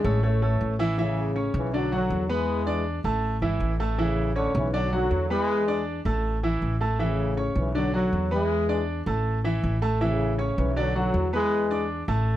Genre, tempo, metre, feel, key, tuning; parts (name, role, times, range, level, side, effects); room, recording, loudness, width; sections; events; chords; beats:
latin, salsa; 159 BPM; 4/4; straight; A major; A4 = 440 Hz
mellow trombone section; melody; 0.0-11.9 s; A2 to A3; -27 LUFS; left 2 dB
clear grand piano; accompaniment; 0.0-12.4 s; D3 to D6; -27 LUFS; right 1 dB
upright bass; bass; 0.0-12.4 s; G#1 to E2; -27 LUFS; equal
light reverb; dark, warm production; -23 LUFS; side -13 dB against mid
1.0-12.4 A section
0.2 A; 1.7 Bm; 2.5 E7; 3.2 A; 4.7 Bm; 5.5 E7; 6.2 A; 7.7 Bm; 8.5 E7; 9.3 A; 10.8 Bm; 11.5 E7
0.23 0.60 | 0.98 1.35 1.73 2.10 | 2.48 2.85 3.23 3.60 | 3.98 4.36 4.73 5.11 | 5.48 5.86 6.24 6.61 | 6.99 7.37 7.74 8.12 | 8.50 8.88 9.25 9.63 | 10.01 10.38 10.76 11.14 | 11.52 11.89 12.27